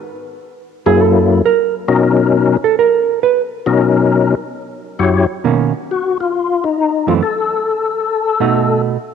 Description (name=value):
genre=jazz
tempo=135 BPM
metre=4/4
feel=swing 68% on 8ths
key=B major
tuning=A4 = 440 Hz
part: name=percussive tonewheel organ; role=melody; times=0.9-8.8 s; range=F#2 to C#5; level=-14 LUFS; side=left 5 dB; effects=slow rotary speaker, chorus vibrato, cassette tape
part: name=hollow-body jazz guitar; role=accompaniment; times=0.9-9.0 s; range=F#2 to B4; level=-15 LUFS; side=right 9 dB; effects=cassette tape
room=moderate lush hall reverb, RT60 2.8 s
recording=home recording on cassette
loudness=-12 LUFS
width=side -7 dB against mid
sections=0.0-5.4 A section; 5.4-9.1 B section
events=hollow-body jazz guitar solo 0.0-5.4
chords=0.1 F#7; 1.9 Bmaj9; 4.5 F#5; 5.4 Bmaj9; 7.2 N.C.; 8.1 B7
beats=| 0.11 0.56 1.00 1.44 | 1.89 2.33 2.77 3.22 | 3.66 4.11 4.55 4.99 | 5.44 5.88 6.33 6.77 | 7.21 7.66 8.10 8.54